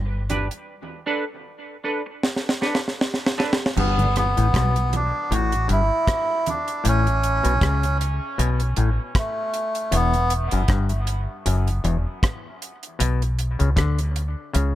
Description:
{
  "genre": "dub reggae",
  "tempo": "78 BPM",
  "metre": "4/4",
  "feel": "swing 56% on 16ths",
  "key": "unclear",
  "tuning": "A4 = 440 Hz",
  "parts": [
    { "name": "deep dub fingered electric bass", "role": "bass", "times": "0.0-14.8 s", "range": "E1 to D2", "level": "-22 LUFS", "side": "equal", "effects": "none" },
    { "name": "semi-hollow electric guitar", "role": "accompaniment", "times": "0.3-3.6 s", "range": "D4 to B4", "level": "-28 LUFS", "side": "right 2 dB", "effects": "analog chorus, low-pass filter, dub echo" },
    { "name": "deep reggae drum kit", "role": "drums", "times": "0.3-14.7 s", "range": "crash cymbal, hi-hat, kick drum, rim click, snare drum", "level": "-24 LUFS", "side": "right 1 dB", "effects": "none" },
    { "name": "congas", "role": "percussion", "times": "0.3-6.7 s", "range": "none", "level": "-34 LUFS", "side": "right 4 dB", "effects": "dub echo" },
    { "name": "melodica", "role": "melody", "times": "3.8-10.3 s", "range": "A3 to F#4", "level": "-24 LUFS", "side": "right 1 dB", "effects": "low-pass filter, dub echo" },
    { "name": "overdriven clav", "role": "riff", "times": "3.8-14.8 s", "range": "E2 to D3", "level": "-28 LUFS", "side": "left 4 dB", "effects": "dub echo" },
    { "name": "mellow tonewheel organ", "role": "accompaniment", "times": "4.0-4.1 s", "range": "G2 to D3", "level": "-29 LUFS", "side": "left 2 dB", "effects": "chorus vibrato, dub echo" }
  ],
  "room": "light reverb",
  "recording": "none",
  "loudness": "-20 LUFS",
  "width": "side -14 dB against mid",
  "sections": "0.0-3.8 A section; 3.8-14.8 B section",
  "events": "break 0.0-3.8; drum fill 2.2-3.8; part muted 6.8-14.8",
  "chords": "0.0 Em7 (rootless); 0.7 Bm7; 3.8 G; 6.8 A; 9.9 Em; 13.0 Bm"
}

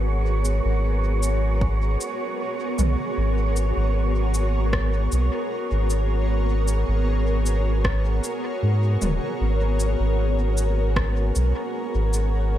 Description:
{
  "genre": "ambient dub",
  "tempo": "77 BPM",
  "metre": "4/4",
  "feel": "straight",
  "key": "G# minor",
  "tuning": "A4 = 442 Hz",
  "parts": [
    { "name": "granular cloud pad", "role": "sustained chords", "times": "0.0-12.6 s", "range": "B3 to C#5", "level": "-27 LUFS", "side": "equal", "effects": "built-in reverb" },
    { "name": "soft dub sub bass", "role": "bass", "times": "0.0-12.6 s", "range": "D#1 to G#2", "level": "-21 LUFS", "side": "equal", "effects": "tube saturation" },
    { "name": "wind-like tuned noise texture", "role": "texture", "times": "0.0-12.6 s", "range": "C#5", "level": "-34 LUFS", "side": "right 4 dB", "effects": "built-in reverb" },
    { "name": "organic electronic drum kit", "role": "drums", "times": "0.4-12.3 s", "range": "cabasa, rim click, toms", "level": "-30 LUFS", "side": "equal", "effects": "overdrive, dub echo" },
    { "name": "electronic kick drum", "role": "drums", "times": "1.6-11.1 s", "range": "none", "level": "-27 LUFS", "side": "equal", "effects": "overdrive" }
  ],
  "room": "little or no reverb",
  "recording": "none",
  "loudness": "-20 LUFS",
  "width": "side -12 dB against mid",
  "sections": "0.0-12.6 A section",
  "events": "none",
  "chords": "0.0 G#m11"
}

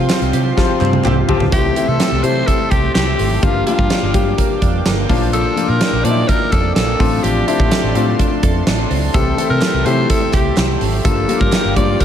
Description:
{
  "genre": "1980s-style pop",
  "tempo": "126 BPM",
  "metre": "4/4",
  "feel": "straight",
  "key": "unclear",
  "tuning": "A4 = 441 Hz",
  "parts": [
    { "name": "clear concert grand piano", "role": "accompaniment", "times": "0.0-12.0 s", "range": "F3 to A4", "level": "-20 LUFS", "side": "left 6 dB", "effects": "none" },
    { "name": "chorused pulse-width pad", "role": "sustained chords", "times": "0.0-12.0 s", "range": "F3 to D6", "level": "-26 LUFS", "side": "right 1 dB", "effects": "none" },
    { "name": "direct-recorded clean electric guitar", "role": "riff", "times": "0.0-12.0 s", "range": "E3 to A4", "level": "-25 LUFS", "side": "right 6 dB", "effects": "analog chorus, tape echo" },
    { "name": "vintage muted fingered electric bass", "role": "bass", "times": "0.0-11.9 s", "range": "G1 to C3", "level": "-19 LUFS", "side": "right 1 dB", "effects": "none" },
    { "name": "huge arena drum kit", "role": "drums", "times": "0.1-12.0 s", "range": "hi-hat, kick drum, snare drum, tambourine, toms", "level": "-17 LUFS", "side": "right 1 dB", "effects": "none" },
    { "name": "group handclap", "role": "percussion", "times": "0.1-1.2, 9.6-11.6 s", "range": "none", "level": "-34 LUFS", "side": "right 4 dB", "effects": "none" },
    { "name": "clear horn section", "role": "stabs", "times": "1.0-1.4 s", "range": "C4 to G4", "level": "-28 LUFS", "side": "right 1 dB", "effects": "tape echo" },
    { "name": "raspy alto saxophone", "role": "melody", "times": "1.5-12.0 s", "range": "F4 to D5", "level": "-21 LUFS", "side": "left 1 dB", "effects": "none" }
  ],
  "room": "light reverb, studio reverb",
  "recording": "none",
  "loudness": "-13 LUFS",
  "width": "side -9 dB against mid",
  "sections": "0.0-1.5 A section; 1.5-12.0 B section",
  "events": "band accent 0.0-1.5; drum fill 0.6-1.5",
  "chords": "0.0 Csus4; 1.5 C6; 3.4 Gm7; 5.1 Bb; 7.0 F6/A; 9.1 C6; 11.0 Gm7"
}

